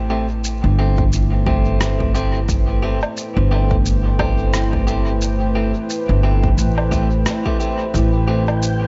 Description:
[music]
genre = ambient dub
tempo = 88 BPM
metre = 4/4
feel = swing 58% on 16ths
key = A minor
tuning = A4 = 440 Hz
[part]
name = deep dark ambient pad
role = sustained chords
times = 0.0-8.9 s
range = A3 to G5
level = -27 LUFS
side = equal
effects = chorus, built-in reverb
[part]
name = upright bass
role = bass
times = 0.0-8.9 s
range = G1 to A1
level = -20 LUFS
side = equal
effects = none
[part]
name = electric guitar at the edge of break-up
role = stabs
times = 0.1-8.4 s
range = A3 to G4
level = -28 LUFS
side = equal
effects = dub echo
[part]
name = electronic shaker, rim click and woodblock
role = drums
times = 0.4-8.8 s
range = none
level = -30 LUFS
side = equal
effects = dub echo
[part]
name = electronic kick drum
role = drums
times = 1.0-8.1 s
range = none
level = -24 LUFS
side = equal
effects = overdrive
[part]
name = wind-like tuned noise texture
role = texture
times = 8.2-8.9 s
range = G5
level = -34 LUFS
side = equal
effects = built-in reverb
[sound]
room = light reverb, digital ambience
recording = nothing above 7.7 kHz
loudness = -18 LUFS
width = mono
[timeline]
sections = 0.0-8.9 A section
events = none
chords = 0.0 Am7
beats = 0.44 1.12 1.80 | 2.49 3.17 3.85 4.53 | 5.21 5.90 6.58 7.26 | 7.94 8.62

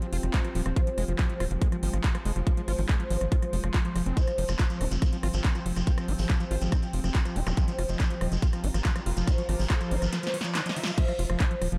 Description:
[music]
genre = psychedelic trance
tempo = 141 BPM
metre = 4/4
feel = straight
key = F minor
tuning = A4 = 440 Hz
[part]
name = oud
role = melody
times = 0.0-11.8 s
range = C3 to F4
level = -39 LUFS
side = equal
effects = phaser, sidechain pumping, digital delay
[part]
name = evolving wavetable pad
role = sustained chords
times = 0.0-11.8 s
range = F3 to F4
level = -41 LUFS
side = equal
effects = ensemble chorus, built-in reverb, phaser, sidechain pumping
[part]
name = overdriven acid bass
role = riff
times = 0.0-11.8 s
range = Eb3 to F4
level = -38 LUFS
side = equal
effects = distortion, sidechain pumping, digital delay
[part]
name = big-room dance drum kit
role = drums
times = 0.0-11.8 s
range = crash cymbal, handclaps, hi-hat, rim click, snare drum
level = -38 LUFS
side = equal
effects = small room ambience
[part]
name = deep dark ambient pad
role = texture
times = 0.0-11.0 s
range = F4 to C6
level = -46 LUFS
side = equal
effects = chorus, built-in reverb, sidechain pumping
[part]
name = tight sequencer bass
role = bass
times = 0.1-11.8 s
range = Eb1 to Ab1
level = -31 LUFS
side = equal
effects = none
[part]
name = electronic kick drum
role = drums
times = 0.3-11.5 s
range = none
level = -28 LUFS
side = equal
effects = small room ambience
[part]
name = shekere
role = percussion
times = 4.2-11.0 s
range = none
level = -44 LUFS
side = equal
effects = none
[part]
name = zap and riser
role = sound effects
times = 7.5-11.0 s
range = none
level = -44 LUFS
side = equal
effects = none
[sound]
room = light reverb, digital ambience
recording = dark, warm production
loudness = -27 LUFS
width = mono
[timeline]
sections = 0.0-11.0 A section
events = riser 7.6-11.0; drum fill 10.1-11.0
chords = 0.0 F5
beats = 0.34 | 0.76 1.19 1.62 2.04 | 2.47 2.89 3.32 3.74 | 4.17 4.59 5.02 5.45 | 5.87 6.30 6.72 7.15 | 7.57 8.00 8.42 8.85 | 9.28 9.70 10.13 10.55 | 10.98 11.40

